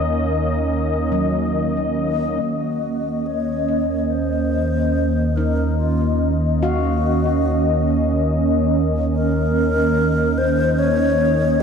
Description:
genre	ambient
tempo	72 BPM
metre	4/4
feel	straight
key	Eb dorian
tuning	A4 = 440 Hz
part	warm analog pad	sustained chords	0.0-11.6 s	Eb3 to Eb5	-19 LUFS	equal	chorus
part	warm sub bass	bass	0.0-11.6 s	Eb2	-24 LUFS	equal	none
part	handpan	arpeggios	1.1-10.3 s	Gb3 to F5	-28 LUFS	left 1 dB	ping-pong delay
part	hollow alto flute	melody	2.4-11.6 s	F4 to Db5	-24 LUFS	left 2 dB	ping-pong delay
room	wet lush hall reverb, RT60 3.1 s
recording	cassette tape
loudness	-17 LUFS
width	side -6 dB against mid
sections	0.0-2.4 A section; 2.4-11.6 B section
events	fade-in on handpan 2.4-11.6; fade-in on alto flute 2.4-11.6; fade-out on sub bass 2.4-11.6; filter sweep on analog synth pad 2.4-11.6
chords	0.0 Ebm7; 2.4 Ebm9

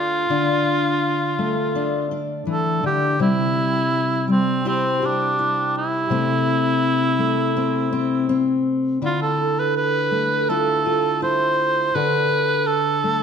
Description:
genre	acoustic folk-pop ballad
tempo	82 BPM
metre	4/4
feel	straight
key	unclear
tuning	A4 = 441 Hz
part	warm cor anglais	melody	0.0-13.2 s	C4 to C5	-21 LUFS	right 2 dB	none
part	fingerpicked steel-string acoustic guitar	accompaniment	0.0-13.2 s	C3 to C5	-21 LUFS	left 3 dB	none
part	vibraphone with soft mallets	arpeggios	9.4-11.4 s	A4	-26 LUFS	right 10 dB	none
room	moderate recital hall reverb, RT60 1.6 s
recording	none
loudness	-18 LUFS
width	side -7 dB against mid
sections	0.0-13.2 A section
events	none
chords	0.0 Dm; 3.2 Cadd9; 6.1 Am/C; 9.0 Dmadd9

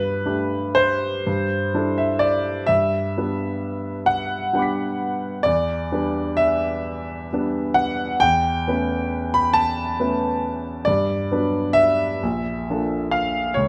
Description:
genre	classical, impressionist solo piano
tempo	44 BPM (dotted quarters)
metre	6/8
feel	uneven beats, rubato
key	G major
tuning	A4 = 440 Hz
part	warm grand piano	solo	0.0-13.7 s	Bb1 to B6	-22 LUFS	equal	none
room	moderate scoring stage reverb, RT60 1.6 s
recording	close, detailed microphones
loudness	-22 LUFS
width	mono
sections	0.0-13.7 A section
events	none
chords	0.0 Gadd9; 1.3 D11/G; 2.7 Gmaj7; 5.4 Em7; 8.2 Aadd9/E; 10.9 Gmaj7; 12.2 Bbmaj7

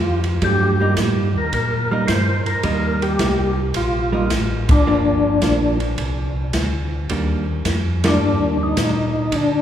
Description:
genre	soul jazz organ trio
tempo	108 BPM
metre	4/4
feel	swing 69% on 8ths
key	unclear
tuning	A4 = 439 Hz
part	percussive tonewheel organ	melody	0.0-9.6 s	D4 to C5	-21 LUFS	left 2 dB	slow rotary speaker, overdrive, chorus vibrato
part	mellow tonewheel organ	bass	0.0-9.6 s	G1 to D3	-22 LUFS	equal	slow rotary speaker
part	open jazz drum kit	drums	0.2-9.5 s	hi-hat, kick drum, ride cymbal, snare drum	-23 LUFS	equal	none
part	hollow-body jazz guitar	accompaniment	0.4-8.7 s	Eb3 to Eb4	-24 LUFS	right 3 dB	none
room	wet church reverb, RT60 3.6 s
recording	recorded in a church or concert hall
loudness	-16 LUFS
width	side -10 dB against mid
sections	0.0-9.6 A section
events	band accent 4.6, 7.9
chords	0.0 Cm7; 4.9 Gm7; 7.1 Ebmaj7

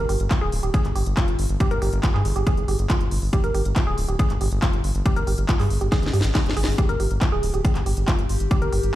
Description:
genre	psychedelic trance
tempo	139 BPM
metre	4/4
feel	straight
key	G phrygian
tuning	A4 = 440 Hz
part	woody wave-folded pluck	riff	0.0-8.8 s	F4 to G5	-28 LUFS	moving between left 2 dB and right 5 dB	chorus, auto-pan, cassette tape, sidechain pumping, digital delay
part	round analog bass	bass	0.0-8.9 s	D1 to G2	-23 LUFS	equal	none
part	techno drum kit	drums	0.1-8.9 s	handclaps, hi-hat, snare drum	-30 LUFS	left 1 dB	overdrive
part	electronic kick drum	drums	0.3-8.6 s	none	-21 LUFS	equal	overdrive
part	overtone-sweeping drone	sustained chords	7.1-9.0 s	G4	-32 LUFS	left 3 dB	chorus, built-in reverb, sidechain pumping
room	little or no reverb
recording	played on a big sound system in a bare room, large studio reverb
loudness	-19 LUFS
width	side -14 dB against mid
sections	0.0-9.0 A section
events	filter sweep on synth arpeggio sound 0.0-9.0; drum fill 5.9-6.8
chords	0.0 G5

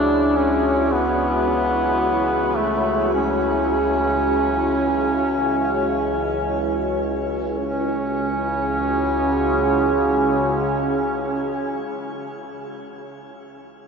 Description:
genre	dark ambient drone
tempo	free time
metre	none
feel	none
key	C# minor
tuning	A4 = 440 Hz
part	warm duduk	melody	0.0-11.9 s	A3 to D4	-22 LUFS	equal	shimmer reverb, tape echo
part	deep dark ambient pad	sustained chords	0.0-12.5 s	E4 to C#5	-23 LUFS	right 1 dB	chorus, built-in reverb, shimmer reverb
part	overtone-sweeping drone	drone	0.0-11.9 s	C#2 to C#3	-26 LUFS	equal	chorus, built-in reverb
room	wet huge ambient reverb, RT60 7.7 s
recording	dreamy mix soaked in reverb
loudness	-18 LUFS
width	side -5 dB against mid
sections	0.0-7.6 A section; 7.6-12.0 B section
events	none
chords	0.0 C#5

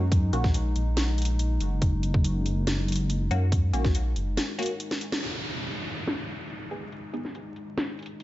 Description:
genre	deep dubstep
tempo	141 BPM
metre	4/4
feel	half-time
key	unclear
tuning	A4 = 438 Hz
part	dark analog pad	sustained chords	0.0-8.2 s	G#3 to D#4	-36 LUFS	left 2 dB	chorus
part	filtered dub chord stab	stabs	0.0-0.5, 3.3-7.3 s	A#3 to G#4	-35 LUFS	left 1 dB	phaser, analog chorus, dub echo
part	dark detuned saw bass	bass	0.0-4.4 s	F#1 to F#2	-25 LUFS	equal	none
part	electronic kick drum	drums	0.1-3.9 s	none	-24 LUFS	equal	studio reverb
part	garage drum kit	drums	0.1-8.2 s	hi-hat, snare drum	-32 LUFS	equal	low-pass filter on hats, studio reverb, low-pass filter on snare
part	downlifter	sound effects	5.2-8.2 s	none	-35 LUFS	equal	none
room	light reverb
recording	vinyl crackle, nothing above 7.7 kHz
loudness	-25 LUFS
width	side -16 dB against mid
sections	0.0-5.2 A section; 5.2-8.2 B section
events	break 4.4-5.2; drum fill 4.9-5.2; band accent 5.1; filter sweep on drum 5.2-8.2; filter sweep on synth stab 5.2-8.2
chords	0.0 F#; 5.2 G#5

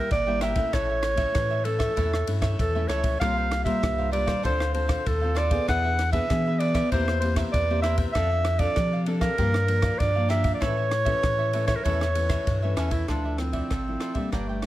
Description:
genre	samba and choro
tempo	97 BPM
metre	4/4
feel	straight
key	D minor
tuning	A4 = 440 Hz
part	warm clarinet	melody	0.0-14.7 s	A3 to F#5	-26 LUFS	right 1 dB	slapback echo
part	cavaquinho	accompaniment	0.0-14.7 s	D4 to G5	-35 LUFS	right 2 dB	none
part	nylon-string guitar	accompaniment	0.0-14.7 s	G2 to A4	-32 LUFS	left 3 dB	none
part	pure sine sub bass	bass	0.1-14.7 s	G1 to F3	-27 LUFS	equal	none
part	compact cocktail drum kit	drums	0.1-14.7 s	kick drum, ride cymbal, rim click	-30 LUFS	equal	none
room	light reverb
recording	none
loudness	-22 LUFS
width	side -14 dB against mid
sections	0.0-13.1 A section; 13.1-14.7 B section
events	none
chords	0.0 Edim; 0.7 A; 3.2 C7sus4; 4.4 Dm7; 5.7 E7; 6.9 C7/E; 8.2 F6; 9.4 Gm7; 10.6 A; 13.1 Dmadd9

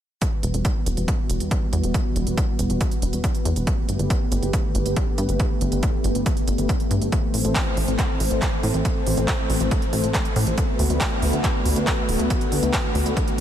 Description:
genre	uplifting trance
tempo	139 BPM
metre	4/4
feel	straight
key	E minor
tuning	A4 = 439 Hz
part	lush unison pad	sustained chords	0.2-13.4 s	D3 to C5	-25 LUFS	equal	chorus, sidechain pumping
part	big-room dance drum kit	drums	0.2-13.4 s	handclaps, hi-hat	-29 LUFS	right 2 dB	overdrive
part	electronic kick drum	drums	0.2-13.3 s	none	-24 LUFS	equal	overdrive
part	plucky analog bass	bass	0.4-13.4 s	D1 to A2	-23 LUFS	equal	sidechain pumping
room	light reverb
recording	none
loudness	-20 LUFS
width	side -10 dB against mid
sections	0.2-13.4 A section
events	filter sweep on analog synth pad 0.2-13.4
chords	0.2 Emadd9; 3.7 Gadd9; 7.1 Am; 10.6 D6

